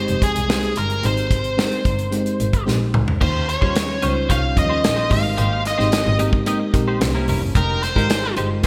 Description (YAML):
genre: polished 1980s jazz-funk pop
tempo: 110 BPM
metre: 4/4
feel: straight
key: unclear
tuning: A4 = 437 Hz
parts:
  - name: nasal lead guitar with a parked wah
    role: melody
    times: 0.0-8.3 s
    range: Ab4 to F5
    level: -26 LUFS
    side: equal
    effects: overdrive, digital delay
  - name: FM electric piano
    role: accompaniment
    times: 0.0-8.7 s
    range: F3 to Db5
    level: -27 LUFS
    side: equal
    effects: lush chorus
  - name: warm double bass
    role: bass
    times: 0.1-8.7 s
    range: F1 to Ab2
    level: -25 LUFS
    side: equal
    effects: none
  - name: modern studio drum kit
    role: drums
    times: 0.1-8.7 s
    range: crash cymbal, hi-hat, kick drum, snare drum, toms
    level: -24 LUFS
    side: equal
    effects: gated reverb
  - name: clean electric guitar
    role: riff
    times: 3.2-8.7 s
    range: G3 to Eb5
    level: -30 LUFS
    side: equal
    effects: analog chorus
room: moderate lush hall reverb, RT60 1.8 s, small room ambience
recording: bright 1980s-style digital production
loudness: -19 LUFS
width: mono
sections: 0.0-3.2 A section; 3.2-8.7 B section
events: drum fill 2.7-3.2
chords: 0.0 Abmaj7; 3.2 Eb13; 5.1 Abmaj9; 7.0 C7b9; 7.6 Fm11